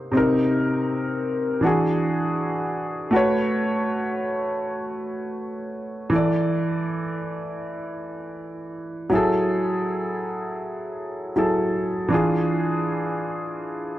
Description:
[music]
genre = soul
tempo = 80 BPM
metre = 4/4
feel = straight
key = unclear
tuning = A4 = 441 Hz
[part]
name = warm concert grand piano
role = solo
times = 0.0-14.0 s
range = C3 to D5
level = -22 LUFS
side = equal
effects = none
[sound]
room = small room reverb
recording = dry, close 1970s-style studio recording, lossy compression artefacts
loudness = -22 LUFS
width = side -14 dB against mid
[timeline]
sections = 0.1-3.1 A section; 3.1-14.0 B section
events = none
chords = 0.1 Cm7; 1.6 E9; 3.1 A69; 6.1 E7sus4; 9.1 F#m9; 12.1 E7b9

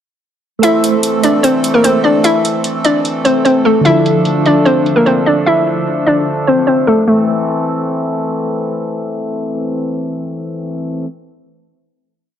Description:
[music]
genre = hip hop, trap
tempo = 149 BPM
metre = 4/4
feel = half-time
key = A minor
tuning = A4 = 440 Hz
[part]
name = hollow square pluck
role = melody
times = 0.6-8.2 s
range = A3 to E5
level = -12 LUFS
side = left 1 dB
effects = chorus, low-pass filter
[part]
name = soft electric-piano-like synth keys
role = accompaniment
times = 0.6-6.9 s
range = D3 to E5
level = -17 LUFS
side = right 2 dB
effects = chorus, phaser, low-pass filter
[part]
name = hand-pumped harmonium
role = sustained chords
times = 0.6-11.1 s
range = E3 to A4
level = -19 LUFS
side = left 1 dB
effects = none
[part]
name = electronic hi-hat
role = drums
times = 0.6-5.2 s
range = none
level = -22 LUFS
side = right 2 dB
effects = none
[sound]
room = light reverb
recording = low-pass filter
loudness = -11 LUFS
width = side -9 dB against mid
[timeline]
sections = 0.6-7.1 breakdown; 7.1-10.3 final chord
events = filter sweep 0.6-7.1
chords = 0.6 Am; 3.9 Dm; 7.1 Am

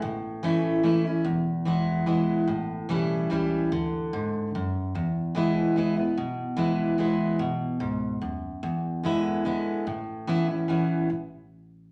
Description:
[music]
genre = bluegrass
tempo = 146 BPM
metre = 3/4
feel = straight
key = A major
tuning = A4 = 443 Hz
[part]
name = picked steel-string acoustic guitar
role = accompaniment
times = 0.0-11.1 s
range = E2 to E4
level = -27 LUFS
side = equal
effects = none
[part]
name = upright bass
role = bass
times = 0.0-11.9 s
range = E1 to E2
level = -45 LUFS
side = equal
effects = none
[sound]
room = wet large studio reverb, RT60 0.8 s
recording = none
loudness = -27 LUFS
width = mono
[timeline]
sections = 0.0-11.1 A section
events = none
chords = 0.0 A; 1.3 E; 2.5 A7; 3.7 D; 4.9 E; 7.4 B; 8.6 E7; 9.9 Aadd9; 11.1 A5

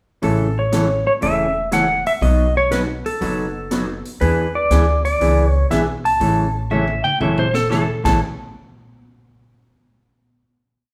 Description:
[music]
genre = country, western swing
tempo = 120 BPM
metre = 4/4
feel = swing 69% on 8ths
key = A major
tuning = A4 = 440 Hz
[part]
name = clean lap steel guitar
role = melody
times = 0.2-8.2 s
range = A4 to A5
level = -22 LUFS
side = equal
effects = none
[part]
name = vintage hollow-body jazz guitar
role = accompaniment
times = 0.2-8.2 s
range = A2 to A4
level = -24 LUFS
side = equal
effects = none
[part]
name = upright bass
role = bass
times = 0.2-8.2 s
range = E1 to E2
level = -23 LUFS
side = equal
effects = none
[part]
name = swinging big-band drum kit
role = drums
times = 0.2-8.1 s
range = crash cymbal, hi-hat, kick drum, snare drum, toms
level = -30 LUFS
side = equal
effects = none
[part]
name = clean lap steel guitar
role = second line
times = 6.7-8.2 s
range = A4 to G5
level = -24 LUFS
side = equal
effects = none
[sound]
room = wet large studio reverb, RT60 0.9 s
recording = band playing live in one room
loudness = -18 LUFS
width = mono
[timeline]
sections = 0.2-8.2 A section; 8.2-10.2 final hit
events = drum fill 6.7-7.7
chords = 0.2 A; 2.2 B; 4.2 E7; 6.2 A; 8.2 N.C.

